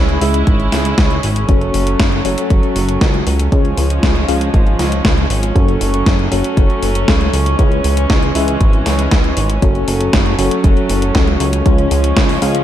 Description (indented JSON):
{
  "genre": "italo disco",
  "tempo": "118 BPM",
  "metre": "4/4",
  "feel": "straight",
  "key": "F# minor",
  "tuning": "A4 = 440 Hz",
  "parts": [
    { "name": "dark studio string section", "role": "sustained chords", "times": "0.0-12.6 s", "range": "E3 to E4", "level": "-20 LUFS", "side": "right 2 dB", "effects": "none" },
    { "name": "mellow tine electric piano", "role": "stabs", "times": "0.0-12.6 s", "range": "C#4 to E#5", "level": "-20 LUFS", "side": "left 3 dB", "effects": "medium stereo tremolo, tape echo" },
    { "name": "chorused synth bass", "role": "bass", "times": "0.0-12.6 s", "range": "F#1 to C#2", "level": "-17 LUFS", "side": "equal", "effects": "none" },
    { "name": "gated 80s digital drum machine", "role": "drums", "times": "0.1-12.6 s", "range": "hi-hat, snare drum", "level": "-20 LUFS", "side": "left 1 dB", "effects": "gated reverb, gated reverb snare, overdrive" },
    { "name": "electronic kick drum", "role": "drums", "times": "0.5-12.3 s", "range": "none", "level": "-14 LUFS", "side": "equal", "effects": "none" }
  ],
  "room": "light reverb",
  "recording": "dark, warm production",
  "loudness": "-12 LUFS",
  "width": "side -11 dB against mid",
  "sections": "0.0-12.6 A section",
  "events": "none",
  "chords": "0.0 C#m; 1.5 F#m; 3.5 C#; 5.6 F#m; 7.6 C#m; 9.6 F#m; 11.7 C#"
}